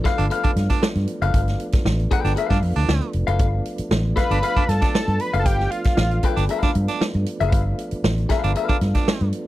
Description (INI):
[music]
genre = funk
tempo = 116 BPM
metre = 4/4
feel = straight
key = unclear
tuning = A4 = 441 Hz
[part]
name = clean electric guitar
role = accompaniment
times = 0.0-8.8 s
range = A4 to G5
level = -25 LUFS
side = left 7 dB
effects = spring reverb
[part]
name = mellow tonewheel organ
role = sustained chords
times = 0.0-9.5 s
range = F3 to D4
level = -31 LUFS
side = right 2 dB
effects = slow rotary speaker
[part]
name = swinging big-band drum kit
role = drums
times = 0.0-9.5 s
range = hi-hat, kick drum, snare drum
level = -22 LUFS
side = equal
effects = none
[part]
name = raspy baritone saxophone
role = second line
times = 0.2-9.3 s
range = D4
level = -26 LUFS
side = right 8 dB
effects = none
[part]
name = vintage muted fingered electric bass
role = bass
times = 0.2-9.3 s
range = F1 to G2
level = -21 LUFS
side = equal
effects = none
[part]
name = fat analog lead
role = melody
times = 4.2-6.3 s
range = F5 to B5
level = -24 LUFS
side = equal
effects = none
[sound]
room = little or no reverb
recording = dry, close 1970s-style studio recording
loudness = -18 LUFS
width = side -15 dB against mid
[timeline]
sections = 0.0-9.5 A section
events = none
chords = 0.0 G9